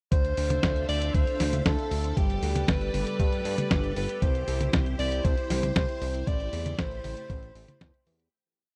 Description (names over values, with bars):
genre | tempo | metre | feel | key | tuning
italo disco | 117 BPM | 4/4 | straight | A minor | A4 = 440 Hz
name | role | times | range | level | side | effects
breathy alto saxophone | melody | 0.1-8.1 s | G4 to D5 | -35 LUFS | equal | tape echo
string machine, full ensemble | sustained chords | 0.1-8.3 s | G3 to B5 | -38 LUFS | equal | ensemble chorus
chorused synth bass | bass | 0.1-8.3 s | G1 to G2 | -33 LUFS | equal | none
dusty soul sampler-style drum kit | drums | 0.1-8.3 s | hi-hat, snare drum, toms | -33 LUFS | equal | none
electronic kick drum | drums | 0.1-7.9 s | none | -30 LUFS | equal | none
room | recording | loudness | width
little or no reverb | dry, close 1970s-style studio recording | -27 LUFS | mono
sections
0.1-8.3 chorus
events
fade-out 5.6-8.3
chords
0.1 Dm7; 2.2 Gadd9; 4.2 C; 6.3 Am7